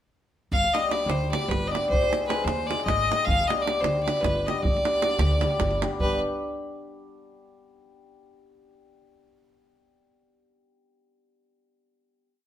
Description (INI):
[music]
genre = balkan folk, Balkan wedding band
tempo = 307 BPM (eighths)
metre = 7/8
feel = straight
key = G phrygian dominant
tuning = A4 = 440 Hz
[part]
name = bright fiddle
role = melody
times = 0.5-6.2 s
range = B4 to F5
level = -26 LUFS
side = left 1 dB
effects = none
[part]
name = upright bass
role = bass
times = 0.5-6.2 s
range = G1 to Eb2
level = -28 LUFS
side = equal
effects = none
[part]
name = davul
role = percussion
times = 0.5-6.2 s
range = none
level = -29 LUFS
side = right 2 dB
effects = none
[part]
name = hammered dulcimer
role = accompaniment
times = 0.7-6.2 s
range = G3 to Ab4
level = -28 LUFS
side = left 2 dB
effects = none
[sound]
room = wet stone room reverb, RT60 1.1 s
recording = band playing live in one room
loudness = -22 LUFS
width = side -11 dB against mid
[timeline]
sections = 0.5-6.0 A section; 6.0-7.3 final chord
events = none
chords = 0.5 G; 1.9 Ab; 3.3 G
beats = | 0.52 0.72 0.92 1.11 1.31 1.51 1.70 | 1.90 2.10 2.29 2.49 2.69 2.88 3.08 | 3.28 3.47 3.67 3.86 4.06 4.25 4.45 | 4.64 4.84 5.03 5.23 5.42 5.62 5.81 | 6.00 6.20